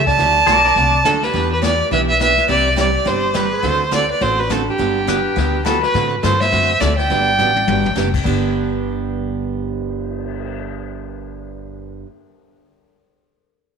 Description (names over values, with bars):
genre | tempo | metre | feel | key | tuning
country, western swing | 208 BPM | 4/4 | swing 61% on 8ths | G major | A4 = 437 Hz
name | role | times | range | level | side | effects
rich fiddle | melody | 0.0-7.9 s | G4 to A5 | -16 LUFS | right 1 dB | tape echo
breathy clarinet | second line | 0.0-7.9 s | D4 to D5 | -25 LUFS | right 8 dB | none
upright bass | bass | 0.0-12.0 s | F#1 to A2 | -23 LUFS | left 3 dB | none
jazz brush drum kit | drums | 0.1-10.5 s | brushed snare drum, crash cymbal, cymbal swell, hi-hat, kick drum, snare drum, toms | -25 LUFS | left 9 dB | none
picked steel-string acoustic guitar | accompaniment | 0.2-12.1 s | G2 to A4 | -23 LUFS | right 8 dB | none
pedal steel guitar | second line | 0.5-1.0, 5.1-5.9 s | Bb4 to D5 | -23 LUFS | left 14 dB | none
room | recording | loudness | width
moderate echo chamber reverb, RT60 1.9 s, small room ambience | 1960s-style stereo with parts hard left and right | -14 LUFS | side -6 dB against mid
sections
0.0-5.9 A section; 5.9-8.3 B section; 8.3-10.6 C section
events
drum fill 7.4-8.0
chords
0.2 D; 1.3 Em7; 2.5 Csus2; 3.6 D7; 4.8 Gmaj7; 5.9 D7; 7.1 Gmaj7; 8.3 G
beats
| 0.18 0.47 0.76 1.05 | 1.34 1.62 1.91 2.20 | 2.49 2.78 3.06 3.35 | 3.64 3.93 4.22 4.51 | 4.79 5.08 5.37 5.66 | 5.95 6.24 6.52 6.81 | 7.10 7.39 7.68 7.97 | 8.26 8.54 8.83 9.12 | 9.41 9.70 9.99 10.28